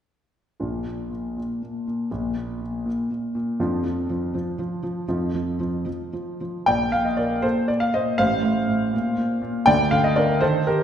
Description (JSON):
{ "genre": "classical-period piano sonatina", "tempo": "80 BPM (dotted quarters)", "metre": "6/8", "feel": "rubato", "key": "Bb major", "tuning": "A4 = 442 Hz", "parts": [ { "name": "warm concert grand piano", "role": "solo", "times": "0.6-10.8 s", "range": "A1 to G5", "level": "-21 LUFS", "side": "equal", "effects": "none" } ], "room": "wet recital hall reverb, RT60 1.3 s", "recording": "heard from further back in the room", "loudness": "-21 LUFS", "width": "side -9 dB against mid", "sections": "0.6-6.7 A section; 6.7-10.8 B section", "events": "none", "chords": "0.6 Bb; 3.6 Dm/F; 5.1 Ebsus2/F; 6.7 Bb; 8.2 F/A; 8.9 Bb5; 9.7 Dmadd11" }